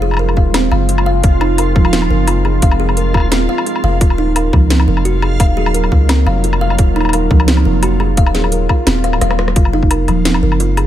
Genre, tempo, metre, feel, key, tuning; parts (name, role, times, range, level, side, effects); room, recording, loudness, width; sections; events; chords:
half-time drum and bass; 173 BPM; 4/4; half-time; F phrygian; A4 = 440 Hz
deep dark ambient pad; sustained chords; 0.0-10.9 s; Gb3 to C5; -22 LUFS; left 1 dB; chorus, built-in reverb, sidechain pumping
kalimba; arpeggios; 0.0-10.9 s; F3 to F5; -18 LUFS; right 1 dB; analog delay
long sustained 808-style bass; bass; 0.0-10.9 s; Eb1 to Db2; -15 LUFS; equal
backwards swelling texture; texture; 0.0-9.6 s; F4; -26 LUFS; right 4 dB; built-in reverb
drum and bass drum kit; drums; 0.1-10.8 s; hi-hat, rim click, snare drum, woodblock; -19 LUFS; left 2 dB
electronic kick drum; drums; 0.4-9.9 s; -12 LUFS; equal; overdrive
light reverb, digital ambience; echo-heavy mix; -11 LUFS; side -12 dB against mid
0.0-9.6 A section; 9.6-10.9 A section
drop 0.0-9.6, 9.6-10.9; drum fill 9.0-9.6
0.0 Fm; 4.0 Ebm; 9.6 Fm